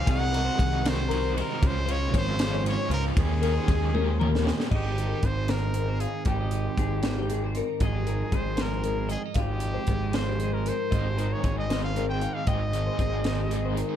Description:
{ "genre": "math rock and midwest emo", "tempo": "77 BPM (dotted quarters)", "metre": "6/8", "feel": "straight", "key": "Ab major", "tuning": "A4 = 437 Hz", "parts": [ { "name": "brilliant trumpet", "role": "melody", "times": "0.0-13.8 s", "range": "G4 to G5", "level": "-33 LUFS", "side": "right 1 dB", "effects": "digital delay" }, { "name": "twelve-string electric guitar", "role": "accompaniment", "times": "0.0-14.0 s", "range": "Ab2 to Ab4", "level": "-33 LUFS", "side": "right 7 dB", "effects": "none" }, { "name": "twelve-string electric guitar", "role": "arpeggios", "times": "0.0-14.0 s", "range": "G4 to G5", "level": "-33 LUFS", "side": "left 7 dB", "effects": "none" }, { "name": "crunchy overdriven guitar", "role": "riff", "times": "0.0-4.7, 10.9-14.0 s", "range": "Eb3 to Ab4", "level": "-35 LUFS", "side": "left 1 dB", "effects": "tremolo" }, { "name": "fuzz picked electric bass", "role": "bass", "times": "0.1-13.8 s", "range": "Ab1 to Eb2", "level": "-28 LUFS", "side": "equal", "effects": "overdrive" }, { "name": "crisp fusion drum kit", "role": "drums", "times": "0.1-13.9 s", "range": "crash cymbal, hi-hat, kick drum, ride cymbal, snare drum, toms", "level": "-29 LUFS", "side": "equal", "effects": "none" } ], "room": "light reverb", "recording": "dark, warm production", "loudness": "-24 LUFS", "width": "side -10 dB against mid", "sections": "0.0-4.7 A section; 4.7-14.0 B section", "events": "drum fill 3.9-4.7", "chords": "0.1 Ab7/C; 1.6 Dbmaj7; 3.2 Eb7sus4; 4.7 Ab69", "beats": "| 0.07 0.84 | 1.61 2.39 | 3.16 3.94 | 4.71 5.48 | 6.26 7.04 | 7.81 8.59 | 9.36 10.14 | 10.91 11.69 | 12.47 13.24" }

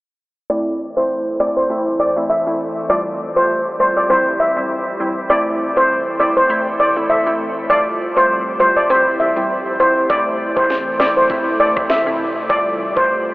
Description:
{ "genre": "dancehall", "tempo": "100 BPM", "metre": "4/4", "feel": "swing 56% on 16ths", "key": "A minor", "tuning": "A4 = 441 Hz", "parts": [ { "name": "steel pan", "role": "melody", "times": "0.5-13.1 s", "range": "C5 to E5", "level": "-15 LUFS", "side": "equal", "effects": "low-pass filter, diffuse ambient delay" }, { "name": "glassy wavetable pluck", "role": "accompaniment", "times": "0.5-13.3 s", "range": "G3 to F4", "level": "-23 LUFS", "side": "equal", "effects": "chorus, low-pass filter" }, { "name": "glassy FM pad", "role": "sustained chords", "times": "0.9-13.3 s", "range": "C3 to C5", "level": "-29 LUFS", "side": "equal", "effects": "ensemble chorus, built-in reverb, sidechain pumping, low-pass filter" }, { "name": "island pop drum kit", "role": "drums", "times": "10.1-13.1 s", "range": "kick drum, rim click, snare drum", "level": "-27 LUFS", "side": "equal", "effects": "none" } ], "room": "wet huge ambient reverb, RT60 8.4 s", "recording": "dreamy mix soaked in reverb, telephone sound", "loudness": "-14 LUFS", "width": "side -22 dB against mid", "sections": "0.5-10.1 A section; 10.1-13.3 B section", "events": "filter sweep 0.5-10.1; hi-hats muted 10.1-13.3", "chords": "0.5 Am; 2.9 Fadd9; 4.1 C; 5.3 Am; 7.7 Fadd9; 8.9 C; 10.1 Am; 12.5 Fadd9", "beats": "| 0.50 1.10 1.70 2.30 | 2.90 3.50 4.10 4.70 | 5.30 5.90 6.50 7.10 | 7.70 8.30 8.90 9.50 | 10.10 10.70 11.30 11.90 | 12.50 13.10" }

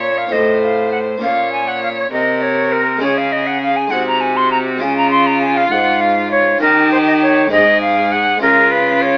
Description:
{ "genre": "classical, baroque-style sonata movement with continuo", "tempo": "67 BPM (dotted quarters)", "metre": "6/8", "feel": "straight", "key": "unclear", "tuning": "A4 = 437 Hz", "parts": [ { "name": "silver concert flute", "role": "melody", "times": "0.0-9.2 s", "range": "Bb4 to C6", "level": "-17 LUFS", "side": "equal", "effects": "none" }, { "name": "rich violin", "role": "second line", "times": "0.0-9.2 s", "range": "F4 to Db5", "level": "-23 LUFS", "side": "equal", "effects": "none" }, { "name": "harpsichord", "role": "accompaniment", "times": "0.0-9.2 s", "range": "Ab2 to Ab4", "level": "-27 LUFS", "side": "equal", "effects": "none" }, { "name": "rich cello", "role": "bass", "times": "0.0-9.2 s", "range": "Ab2 to Eb3", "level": "-21 LUFS", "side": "equal", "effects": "none" } ], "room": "light reverb", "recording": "AM radio sound", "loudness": "-14 LUFS", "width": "mono", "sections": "0.0-9.2 A section", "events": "none", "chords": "0.3 F/A; 1.2 Bbm; 3.0 Db; 3.9 Ab7/C; 4.8 Db; 6.6 Eb7; 7.5 Ab; 8.4 Db", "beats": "0.32 | 1.22 2.12 | 3.02 3.91 | 4.81 5.71 | 6.61 7.51 | 8.42" }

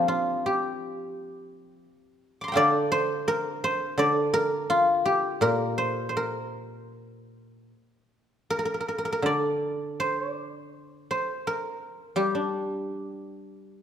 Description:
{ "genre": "chinese traditional, Chinese solo plucked strings", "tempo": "77-88 BPM", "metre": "4/4", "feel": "rubato", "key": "D jue mode", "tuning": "A4 = 440 Hz", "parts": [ { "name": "guzheng", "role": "solo", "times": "0.0-13.8 s", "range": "Bb2 to D6", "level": "-25 LUFS", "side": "equal", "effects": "none" } ], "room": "moderate concert hall reverb, RT60 1.8 s", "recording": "minimal, uncompressed stereo recording", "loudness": "-24 LUFS", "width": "side -9 dB against mid", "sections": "0.0-13.8 A section", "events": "none", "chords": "none", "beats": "0.44 1.15 1.85 | 2.57 3.28 3.99 4.70 | 5.43 6.17 6.94 7.72 | 8.50 9.26 10.00 10.74 | 11.47 12.18 12.88 13.57" }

